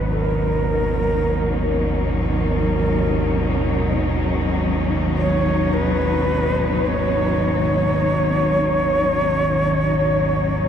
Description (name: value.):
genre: dark ambient drone.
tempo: free time.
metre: none.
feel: none.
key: unclear.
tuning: A4 = 440 Hz.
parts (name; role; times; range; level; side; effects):
mellow shakuhachi; melody; 0.0-10.7 s; A#4 to C#5; -22 LUFS; equal; diffuse ambient delay.
warm chamber cello section; sustained chords; 0.0-10.7 s; B2 to D#4; -22 LUFS; left 1 dB; none.
analog drone; drone; 0.0-10.7 s; G#1 to D#2; -22 LUFS; equal; chorus.
room: wet huge ambient reverb, RT60 7.7 s.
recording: dark, warm production.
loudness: -17 LUFS.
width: side -8 dB against mid.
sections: 0.0-10.7 A section.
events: filter sweep on synth drone 0.0-10.7.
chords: 0.0 Badd9/G#.